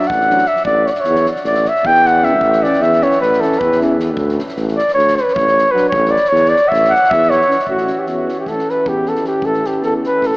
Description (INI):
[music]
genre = balkan folk, Balkan brass band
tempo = 308 BPM (eighths)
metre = 9/8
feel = straight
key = A mixolydian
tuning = A4 = 440 Hz
[part]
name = mellow flugelhorn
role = melody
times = 0.0-10.4 s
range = F#4 to G5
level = -13 LUFS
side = equal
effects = none
[part]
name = clear trombone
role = accompaniment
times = 0.0-10.4 s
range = E3 to F#3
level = -28 LUFS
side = right 1 dB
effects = none
[part]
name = warm euphonium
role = accompaniment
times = 0.0-10.4 s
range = C#4 to D4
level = -25 LUFS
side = left 1 dB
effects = none
[part]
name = soft-mallet drum kit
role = percussion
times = 0.0-10.4 s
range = kick drum, snare drum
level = -32 LUFS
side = equal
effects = none
[part]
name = mellow tuba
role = bass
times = 0.1-10.3 s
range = A1 to E2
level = -19 LUFS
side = equal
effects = none
[sound]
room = wet cathedral reverb, RT60 6.6 s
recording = in a vast, echoing space, AM radio sound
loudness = -12 LUFS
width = side -24 dB against mid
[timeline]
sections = 0.0-7.7 A section; 7.7-10.4 B section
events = flugelhorn solo 0.0-7.7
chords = 0.0 D; 0.7 A; 4.2 D5; 5.9 A